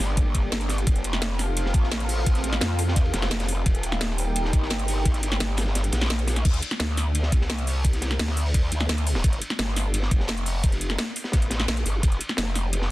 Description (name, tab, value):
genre	dark technical drum and bass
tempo	172 BPM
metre	4/4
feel	straight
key	unclear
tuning	A4 = 442 Hz
part	dark analog pad	sustained chords	0.0-6.4 s	Bb3 to G5	-33 LUFS	right 1 dB	chorus, vintage 12-bit sampler grit, sidechain pumping
part	growl bass	bass	0.0-12.9 s	Eb1 to F2	-25 LUFS	equal	chorus, tube saturation, sidechain pumping
part	crunchy breakbeat drum kit	drums	0.0-12.9 s	hi-hat, ride cymbal, snare drum	-33 LUFS	equal	high-pass filter on cymbals, high-pass filter on hats, high-pass filter on snare, high-pass filter on room
part	drum and bass drum kit	drums	0.0-12.8 s	crash cymbal, hi-hat, snare drum	-28 LUFS	equal	soft clipping on snare
part	electronic kick drum	drums	0.2-12.1 s	none	-21 LUFS	equal	none
room	small room ambience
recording	dense, heavily limited modern master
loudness	-22 LUFS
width	side -17 dB against mid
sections	0.0-6.5 A section; 6.5-12.9 A section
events	drop 0.0-6.5, 6.5-12.9; kick drops out 5.8-6.5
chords	0.0 Gm; 0.9 F; 3.7 Eb; 6.5 Csus2; 9.2 N.C.